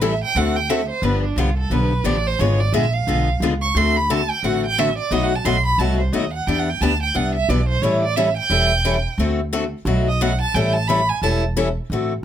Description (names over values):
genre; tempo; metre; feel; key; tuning
acoustic string swing (jazz manouche); 177 BPM; 4/4; swing 60% on 8ths; D mixolydian; A4 = 440 Hz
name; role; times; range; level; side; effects
rich violin; second line; 0.0-11.3 s; D4 to C#6; -21 LUFS; right 4 dB; none
picked steel-string acoustic guitar; accompaniment; 0.0-12.1 s; B2 to A4; -21 LUFS; left 4 dB; none
upright bass; bass; 0.0-12.2 s; E1 to E2; -22 LUFS; right 1 dB; none
room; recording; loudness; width
light reverb; none; -17 LUFS; side -10 dB against mid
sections
0.0-11.9 A section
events
violin solo 0.0-11.9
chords
0.4 D7; 1.0 G7; 2.4 G#dim7; 3.8 D7; 5.1 B7b9; 6.5 Em7; 7.8 A7; 9.2 D7; 9.9 B7; 10.5 A7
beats
0.02 0.36 0.70 | 1.04 1.38 1.72 2.06 | 2.40 2.73 3.08 3.41 | 3.75 4.09 4.43 4.77 | 5.11 5.45 5.79 6.13 | 6.47 6.81 7.15 7.49 | 7.83 8.17 8.51 8.85 | 9.19 9.53 9.87 10.21 | 10.55 10.89 11.23 11.57 | 11.91